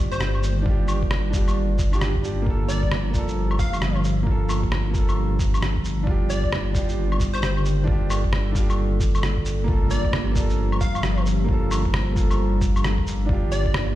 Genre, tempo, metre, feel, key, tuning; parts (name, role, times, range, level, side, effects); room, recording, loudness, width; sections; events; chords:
future garage; 133 BPM; 4/4; swing 63% on 16ths; G minor; A4 = 440 Hz
felt-muted upright piano; accompaniment; 0.0-14.0 s; Bb3 to A4; -30 LUFS; right 4 dB; vintage 12-bit sampler grit, sidechain pumping, tape echo
warbly tape-like pad; sustained chords; 0.0-14.0 s; Eb3 to A4; -29 LUFS; equal; chorus, built-in reverb, sidechain pumping
dark detuned saw bass; bass; 0.0-14.0 s; G1; -24 LUFS; equal; sidechain pumping
plucky unison lead; melody; 0.1-13.8 s; C5 to F5; -32 LUFS; left 1 dB; tape echo
electronic shaker, claves and rim click; drums; 0.1-13.9 s; -29 LUFS; left 1 dB
electronic kick drum; drums; 0.7-13.7 s; -24 LUFS; equal
impact; sound effects; 9.7-11.5 s; -31 LUFS; equal
light reverb; played on a big sound system in a bare room, stone room reverb; -20 LUFS; side -14 dB against mid
0.0-9.7 A section; 9.7-14.0 B section
impact 9.7-11.5
0.0 Ebmaj7/G; 2.5 Gm7; 6.1 Ebmaj7/G; 9.7 Gm7; 13.3 Ebmaj7/G